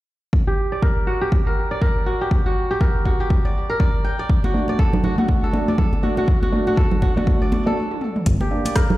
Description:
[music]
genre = afro house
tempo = 121 BPM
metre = 4/4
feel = swing 59% on 16ths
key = G harmonic minor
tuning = A4 = 441 Hz
[part]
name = electronic kick drum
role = drums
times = 0.3-8.9 s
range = none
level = -19 LUFS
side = equal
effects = overdrive
[part]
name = kora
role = arpeggios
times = 0.5-9.0 s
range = F#4 to G5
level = -24 LUFS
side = equal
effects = sidechain pumping, low-pass filter, digital delay
[part]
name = congas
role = percussion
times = 4.4-9.0 s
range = none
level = -24 LUFS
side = right 2 dB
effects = none
[part]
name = felt-muted upright piano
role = stabs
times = 4.5-9.0 s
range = A3 to F#5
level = -23 LUFS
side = equal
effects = sidechain pumping, digital delay
[part]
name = deep house drum kit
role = drums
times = 7.9-8.9 s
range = hi-hat, rim click, toms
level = -26 LUFS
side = equal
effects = overdrive
[part]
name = smooth synth bass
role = bass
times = 8.3-8.4 s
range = G1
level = -20 LUFS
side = equal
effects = tube saturation, sidechain pumping
[sound]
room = light reverb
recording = played on a big sound system in a bare room, stone room reverb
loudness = -17 LUFS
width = side -17 dB against mid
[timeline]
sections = 0.3-8.3 A section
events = stop 7.8-8.3; drum fill 7.9-8.3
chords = 0.3 Gm; 4.3 D; 8.3 Gm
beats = | 0.33 0.82 1.32 1.82 | 2.31 2.81 3.30 3.80 | 4.29 4.79 5.29 5.78 | 6.28 6.78 7.27 7.77 | 8.26 8.76

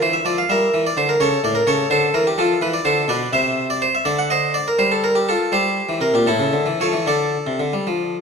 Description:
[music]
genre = classical, baroque-style suite movement for harpsichord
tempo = 74-86 BPM (dotted quarters)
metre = 6/8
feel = rubato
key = D minor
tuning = A4 = 440 Hz
[part]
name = harpsichord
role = solo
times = 0.0-8.2 s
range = A2 to F#5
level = -16 LUFS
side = equal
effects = none
[sound]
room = wet recital hall reverb, RT60 1.7 s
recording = dark, warm production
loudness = -16 LUFS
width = side -5 dB against mid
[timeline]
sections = 0.0-8.2 A section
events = none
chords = 0.5 Edim; 1.2 A; 1.9 Dm; 2.6 E5; 3.3 N.C.; 4.1 D7b9b13; 4.8 Gm11; 5.5 Edim/G; 6.3 A; 7.1 Dm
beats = 0.47 | 1.18 1.90 | 2.61 3.33 | 4.06 4.79 | 5.53 6.27 | 7.06 7.86

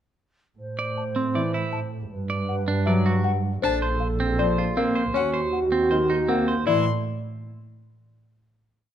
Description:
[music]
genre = classical, minimalist pattern music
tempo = 158 BPM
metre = 4/4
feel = straight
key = A dorian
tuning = A4 = 440 Hz
[part]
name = mellow alto flute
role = second line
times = 0.6-6.4 s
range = F#4 to C5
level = -28 LUFS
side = right 3 dB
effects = none
[part]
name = warm studio double bass section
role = bass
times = 0.6-6.8 s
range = Bb1 to A2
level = -27 LUFS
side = right 2 dB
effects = none
[part]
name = clean electric guitar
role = arpeggios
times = 0.8-6.8 s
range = C4 to D5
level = -28 LUFS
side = right 3 dB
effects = none
[part]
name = buzzing marimba with soft mallets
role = melody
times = 1.0-6.8 s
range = C5 to A5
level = -29 LUFS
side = left 11 dB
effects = none
[part]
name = clear concert grand piano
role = accompaniment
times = 1.3-6.8 s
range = D#3 to Bb3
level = -26 LUFS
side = left 2 dB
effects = none
[part]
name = warm violin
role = arpeggios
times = 3.6-6.9 s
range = F#5 to C6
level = -32 LUFS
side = left 5 dB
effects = none
[sound]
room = moderate recital hall reverb, RT60 1.6 s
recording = dark, warm production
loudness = -21 LUFS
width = side -10 dB against mid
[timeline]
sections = 0.6-6.7 A section; 6.7-8.2 final chord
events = none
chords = 0.6 Am; 2.1 Gmaj7; 3.6 Bbmaj7; 5.2 D#m7; 6.7 Am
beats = | 0.60 0.97 1.35 1.74 | 2.12 2.49 2.87 3.25 | 3.63 4.01 4.39 4.77 | 5.15 5.53 5.91 6.29 | 6.67

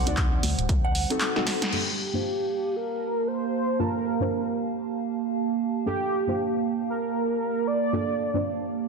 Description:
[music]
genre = deep house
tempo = 116 BPM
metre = 4/4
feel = swing 60% on 16ths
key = G minor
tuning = A4 = 439 Hz
[part]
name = soft synth bell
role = melody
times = 0.0-1.4 s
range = F#5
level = -34 LUFS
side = right 2 dB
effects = chorus, phaser, digital delay
[part]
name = warbly tape-like pad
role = sustained chords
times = 0.0-8.9 s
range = G3 to A5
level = -29 LUFS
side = right 6 dB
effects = chorus, built-in reverb, sidechain pumping
[part]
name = deep mellow chord stab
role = stabs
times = 0.0-8.9 s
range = G2 to A5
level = -30 LUFS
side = equal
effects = chorus, sidechain pumping, digital delay
[part]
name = organ-like FM bass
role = bass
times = 0.0-1.1 s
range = D1 to D2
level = -28 LUFS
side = equal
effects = sidechain pumping
[part]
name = punchy analog drum machine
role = drums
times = 0.1-1.8 s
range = crash cymbal, handclaps, hi-hat, snare drum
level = -28 LUFS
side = equal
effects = small room ambience
[part]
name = electronic kick drum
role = drums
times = 0.2-0.8 s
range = none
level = -25 LUFS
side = equal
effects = small room ambience
[part]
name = warm velvety synth lead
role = melody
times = 1.7-8.4 s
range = G4 to D5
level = -28 LUFS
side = equal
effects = chorus, dub echo
[sound]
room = moderate digital room reverb, RT60 1.2 s, digital ambience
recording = dense, heavily limited modern master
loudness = -24 LUFS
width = side -4 dB against mid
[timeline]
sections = 0.0-1.7 A section; 1.7-8.9 B section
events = drum fill 1.2-1.7; band accent 1.6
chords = 0.0 D7b9; 1.7 Gm9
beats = 0.17 0.69 1.21 | 1.73 2.24 2.76 3.28 | 3.79 4.31 4.83 5.35 | 5.86 6.38 6.90 7.42 | 7.93 8.45

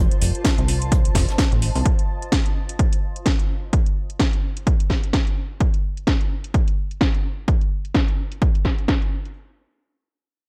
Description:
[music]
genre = piano house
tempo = 128 BPM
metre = 4/4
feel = swing 57% on 16ths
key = unclear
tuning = A4 = 440 Hz
[part]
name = string machine, violins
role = sustained chords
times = 0.0-1.9 s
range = C5 to C6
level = -41 LUFS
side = equal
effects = ensemble chorus, sidechain pumping
[part]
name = plucky analog bass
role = bass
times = 0.0-1.8 s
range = F1 to C2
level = -23 LUFS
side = equal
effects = sidechain pumping
[part]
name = granular cloud pad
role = texture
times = 0.1-1.9 s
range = F4 to A5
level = -38 LUFS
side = equal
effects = built-in reverb, sidechain pumping
[part]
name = house drum kit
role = drums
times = 0.1-9.3 s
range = hi-hat, snare drum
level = -28 LUFS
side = equal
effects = overdrive, low-pass filter on hats, low-pass filter on snare, low-pass filter on room
[part]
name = soft brush drum kit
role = drums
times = 0.2-1.8 s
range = hi-hat, snare drum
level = -40 LUFS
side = equal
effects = none
[part]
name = electronic kick drum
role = drums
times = 0.4-9.0 s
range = none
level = -22 LUFS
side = equal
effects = overdrive
[sound]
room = small room ambience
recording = none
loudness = -21 LUFS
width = mono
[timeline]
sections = 0.0-9.4 A section; 9.4-10.5 B section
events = filter sweep on drum 0.0-9.4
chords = 0.0 F7; 1.9 N.C.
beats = 0.45 0.92 1.39 | 1.85 2.32 2.79 3.26 | 3.73 4.20 4.67 5.14 | 5.61 6.07 6.54 7.01 | 7.48 7.95 8.42 8.89

